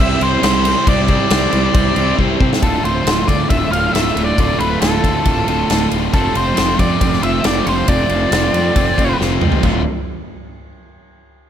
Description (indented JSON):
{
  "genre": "classic rock",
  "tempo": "137 BPM",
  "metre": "4/4",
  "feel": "straight",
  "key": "D minor",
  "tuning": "A4 = 440 Hz",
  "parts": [
    { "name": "octave-fuzz lead guitar", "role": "melody", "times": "0.0-9.2 s", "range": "A4 to F5", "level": "-19 LUFS", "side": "left 1 dB", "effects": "distortion" },
    { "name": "string machine, violas", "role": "sustained chords", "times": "0.0-9.9 s", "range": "A3 to D5", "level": "-29 LUFS", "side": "equal", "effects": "none" },
    { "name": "overdriven semi-hollow guitar", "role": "riff", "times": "0.0-9.8 s", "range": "D2 to C5", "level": "-21 LUFS", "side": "right 10 dB", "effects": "none" },
    { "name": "tight distorted guitar", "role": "riff", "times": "0.0-9.8 s", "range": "D2 to C5", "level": "-22 LUFS", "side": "left 12 dB", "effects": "distortion" },
    { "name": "fuzz fingered electric bass", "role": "bass", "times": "0.0-9.8 s", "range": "D1 to C3", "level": "-20 LUFS", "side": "left 1 dB", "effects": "overdrive" },
    { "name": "big rock drum kit", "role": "drums", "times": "0.2-9.7 s", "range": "china cymbal, crash cymbal, kick drum, ride cymbal, snare drum, toms", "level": "-18 LUFS", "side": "equal", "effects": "none" }
  ],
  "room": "little or no reverb",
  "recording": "none",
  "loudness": "-13 LUFS",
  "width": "side -9 dB against mid",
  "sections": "0.0-2.6 A section; 2.6-9.6 B section; 9.6-11.4 C section",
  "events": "drum fill 2.2-2.6, 9.2-9.6",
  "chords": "0.0 Cadd9; 2.6 Dm; 6.1 F6; 9.6 Dm",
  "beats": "0.43 | 0.87 1.31 1.74 2.18 | 2.62 3.06 3.50 3.94 | 4.38 4.81 5.25 5.69 | 6.13 6.57 7.00 7.44 | 7.88 8.32 8.76 9.19 | 9.63"
}